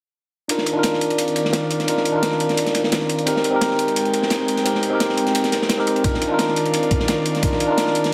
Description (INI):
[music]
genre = liquid drum and bass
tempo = 173 BPM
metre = 4/4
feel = straight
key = C minor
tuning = A4 = 440 Hz
[part]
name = bright tine electric piano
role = accompaniment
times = 0.5-8.1 s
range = C4 to Bb4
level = -22 LUFS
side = equal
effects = low-pass filter, digital delay
[part]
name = airy breathy pad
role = sustained chords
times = 0.5-8.1 s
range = Eb3 to G5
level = -27 LUFS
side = equal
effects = chorus, sidechain pumping
[part]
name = crunchy breakbeat drum kit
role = drums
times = 0.5-8.1 s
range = ride cymbal, snare drum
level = -27 LUFS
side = equal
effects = high-pass filter on cymbals, small room ambience, high-pass filter on snare, high-pass filter on room
[part]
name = electronic hi-hat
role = drums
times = 0.5-8.1 s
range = none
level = -30 LUFS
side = equal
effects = small room ambience
[part]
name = electronic kick drum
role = drums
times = 6.0-7.5 s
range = none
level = -24 LUFS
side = equal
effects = small room ambience
[sound]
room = moderate plate reverb, RT60 1.4 s, studio ambience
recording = none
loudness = -20 LUFS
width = mono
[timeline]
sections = 0.5-8.1 A section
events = filter sweep on tine electric piano 0.5-8.1; filter sweep on analog synth pad 0.5-8.1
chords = 0.5 Cm11; 3.3 Abmaj9; 6.0 Cm11